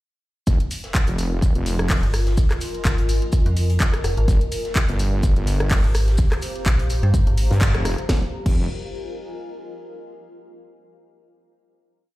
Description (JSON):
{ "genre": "bass house", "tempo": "126 BPM", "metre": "4/4", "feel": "swing 55% on 16ths", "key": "F minor", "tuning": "A4 = 439 Hz", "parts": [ { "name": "wobble bass", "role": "bass", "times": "0.5-8.7 s", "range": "F1 to G2", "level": "-22 LUFS", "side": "equal", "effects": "chorus, overdrive, sidechain pumping" }, { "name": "electronic kick drum", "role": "drums", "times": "0.5-8.5 s", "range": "none", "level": "-19 LUFS", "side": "equal", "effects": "none" }, { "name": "house drum kit", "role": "drums", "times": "0.5-8.5 s", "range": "crash cymbal, handclaps, hi-hat, rim click, snare drum", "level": "-28 LUFS", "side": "equal", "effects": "none" }, { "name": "modern studio drum kit", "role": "drums", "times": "0.5-8.0 s", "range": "hi-hat, shaker, snare drum", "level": "-37 LUFS", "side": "left 1 dB", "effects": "high-pass filter on hats, high-pass filter on snare, high-pass filter on perc, high-pass filter on room" }, { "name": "granular cloud pad", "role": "texture", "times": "1.5-10.0 s", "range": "F4 to Bb5", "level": "-32 LUFS", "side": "left 2 dB", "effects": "built-in reverb, sidechain pumping" }, { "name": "metallic FM bass", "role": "bass", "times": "2.0-7.5 s", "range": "F1 to G2", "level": "-19 LUFS", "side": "equal", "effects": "tube saturation, sidechain pumping" } ], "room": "small room ambience", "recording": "played on a big sound system in a bare room, large studio reverb", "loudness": "-18 LUFS", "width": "side -17 dB against mid", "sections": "0.5-8.1 drop; 8.1-10.0 final chord", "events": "drop 0.5-8.1; band accent 7.6", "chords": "0.5 Fm; 4.3 Gm; 8.1 Fm" }